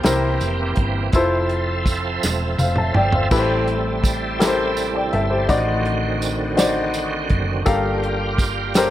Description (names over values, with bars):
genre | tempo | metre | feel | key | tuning
slow gospel | 55 BPM (dotted quarters) | 6/8 | straight | unclear | A4 = 440 Hz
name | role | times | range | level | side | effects
warm baby grand piano | accompaniment | 0.0-8.9 s | G2 to A5 | -21 LUFS | left 2 dB | none
bright tonewheel organ | sustained chords | 0.0-8.9 s | D3 to E5 | -25 LUFS | right 3 dB | slow rotary speaker, chorus vibrato
hollow-body short-scale fingered electric bass | bass | 0.0-8.9 s | E1 to C2 | -24 LUFS | equal | none
warm soul drum kit | drums | 0.0-8.9 s | crash cymbal, hi-hat, kick drum, snare drum, toms | -21 LUFS | equal | none
tambourine | percussion | 0.1-8.9 s | none | -31 LUFS | right 6 dB | none
room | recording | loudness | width
light reverb, studio reverb | none | -17 LUFS | side -13 dB against mid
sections
0.0-3.3 A section; 3.3-8.9 B section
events
drum fill 2.2-3.3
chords
0.0 C7; 1.1 Fmaj7; 3.3 Am7; 5.5 D7b9/A; 7.7 Gm9